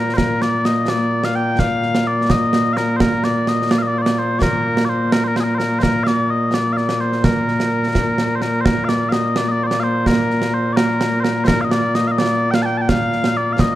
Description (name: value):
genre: scottish traditional, Scottish pipe music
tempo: 85 BPM (dotted quarters)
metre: 6/8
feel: straight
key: Bb major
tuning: A4 = 440 Hz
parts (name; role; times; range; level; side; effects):
- mellow small bagpipes; melody; 0.0-13.8 s; Bb2 to A5; -17 LUFS; left 1 dB; none
- concert snare drum and concert bass drum; drums; 0.2-13.7 s; none; -20 LUFS; right 2 dB; none
room: moderate concert hall reverb, RT60 1.8 s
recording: dark, warm production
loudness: -15 LUFS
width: side -14 dB against mid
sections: 0.0-8.7 A section; 8.7-13.8 A section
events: none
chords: none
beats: | 0.18 0.89 | 1.59 2.30 | 3.01 3.71 | 4.42 5.12 | 5.83 6.54 | 7.24 7.95 | 8.65 9.36 | 10.07 10.77 | 11.48 12.18 | 12.89 13.60